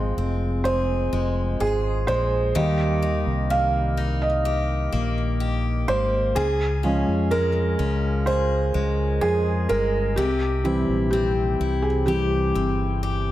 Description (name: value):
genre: pop ballad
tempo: 63 BPM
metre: 4/4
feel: straight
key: F minor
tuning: A4 = 440 Hz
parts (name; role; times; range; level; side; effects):
- felt-muted upright piano; accompaniment; 0.0-13.3 s; Eb3 to F5; -24 LUFS; right 2 dB; none
- picked steel-string acoustic guitar; arpeggios; 0.0-13.3 s; F2 to Ab4; -28 LUFS; left 4 dB; none
- fingered electric bass; bass; 0.0-13.3 s; F1 to F2; -24 LUFS; equal; none
room: moderate lush hall reverb, RT60 1.8 s, small room ambience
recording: none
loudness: -20 LUFS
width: side -14 dB against mid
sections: 0.0-13.3 A section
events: felt piano solo 0.0-13.3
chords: 0.0 Fm; 2.6 Eb; 6.4 Db; 10.2 C